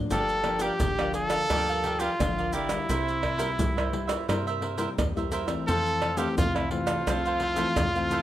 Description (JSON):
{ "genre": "samba and choro", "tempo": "86 BPM", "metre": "4/4", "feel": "straight", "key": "F major", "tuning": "A4 = 440 Hz", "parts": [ { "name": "nylon-string guitar", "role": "accompaniment", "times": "0.0-8.2 s", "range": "F2 to E4", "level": "-33 LUFS", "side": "left 4 dB", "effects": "none" }, { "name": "tight sequencer bass", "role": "bass", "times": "0.0-8.2 s", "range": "G1 to G2", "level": "-34 LUFS", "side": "equal", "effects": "none" }, { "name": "clear trumpet", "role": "melody", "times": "0.1-8.2 s", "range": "E4 to A4", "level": "-28 LUFS", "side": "equal", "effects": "none" }, { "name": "cavaquinho", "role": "accompaniment", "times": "0.1-8.2 s", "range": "E4 to F5", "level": "-33 LUFS", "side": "right 4 dB", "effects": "none" }, { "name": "tube shaker, surdo, pandeiro and tamborim", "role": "percussion", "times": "0.1-8.2 s", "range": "none", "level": "-30 LUFS", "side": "right 1 dB", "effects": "none" } ], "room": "moderate large studio reverb, RT60 1.1 s", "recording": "none", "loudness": "-24 LUFS", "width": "side -13 dB against mid", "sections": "0.0-8.2 A section", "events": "none", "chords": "0.1 Gm7; 2.9 C7; 5.7 Fmaj7" }